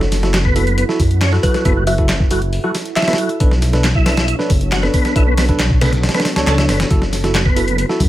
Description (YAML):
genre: breakbeat, breaks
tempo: 137 BPM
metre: 4/4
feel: straight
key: F# minor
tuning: A4 = 440 Hz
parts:
  - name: deep dark ambient pad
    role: sustained chords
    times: 0.0-8.1 s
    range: B3 to C#5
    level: -26 LUFS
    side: right 1 dB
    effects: chorus, built-in reverb, sidechain pumping
  - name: dark detuned saw bass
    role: bass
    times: 0.0-8.1 s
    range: F#1 to F#2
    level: -17 LUFS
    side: equal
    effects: tube saturation
  - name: dusty soul sampler-style drum kit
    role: drums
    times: 0.0-8.1 s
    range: hi-hat, kick drum, snare drum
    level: -17 LUFS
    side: equal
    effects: none
  - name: punchy analog drum machine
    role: drums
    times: 0.1-8.1 s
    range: handclaps, hi-hat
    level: -26 LUFS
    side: equal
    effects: none
  - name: tine electric piano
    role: stabs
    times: 0.2-8.0 s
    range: D4 to C#5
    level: -22 LUFS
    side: right 2 dB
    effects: tape echo
  - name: tonewheel organ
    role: riff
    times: 0.3-7.9 s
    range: F#3 to A4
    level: -22 LUFS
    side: equal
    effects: chorus vibrato, fast rotary speaker, vintage 12-bit sampler grit, tape echo
  - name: kalimba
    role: melody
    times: 1.4-3.1 s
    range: B4 to E5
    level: -23 LUFS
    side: equal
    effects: small speaker sound, tape echo
room: little or no reverb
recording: none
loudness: -13 LUFS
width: side -14 dB against mid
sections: 0.0-8.1 A section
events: none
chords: 0.0 F#m7; 3.4 Bm7; 6.9 F#m7